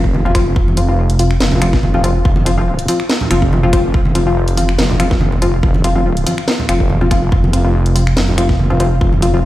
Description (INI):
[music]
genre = deep dubstep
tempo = 142 BPM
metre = 4/4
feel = swing 54% on 16ths, half-time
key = unclear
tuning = A4 = 440 Hz
[part]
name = filtered dub chord stab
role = stabs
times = 0.0-9.4 s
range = F3 to F4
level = -18 LUFS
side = left 2 dB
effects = chorus, dub echo
[part]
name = deep soft wobble bass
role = bass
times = 0.0-9.5 s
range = F1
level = -15 LUFS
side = equal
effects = chorus
[part]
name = electronic kick drum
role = drums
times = 0.0-9.1 s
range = none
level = -14 LUFS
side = equal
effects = none
[part]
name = congas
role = percussion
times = 0.1-9.2 s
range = none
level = -21 LUFS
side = right 2 dB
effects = dub echo
[part]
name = garage drum kit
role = drums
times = 0.3-9.3 s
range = finger snaps, hi-hat, snare drum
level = -21 LUFS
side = equal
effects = none
[sound]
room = little or no reverb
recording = played on a big sound system in a bare room, stone room reverb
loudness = -11 LUFS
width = side -15 dB against mid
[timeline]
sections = 0.0-9.5 A section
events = none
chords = 0.0 F5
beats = 0.14 | 0.56 0.98 1.41 1.83 | 2.25 2.67 3.10 3.52 | 3.94 4.37 4.79 5.21 | 5.63 6.05 6.48 6.90 | 7.32 7.75 8.17 8.59 | 9.01 9.44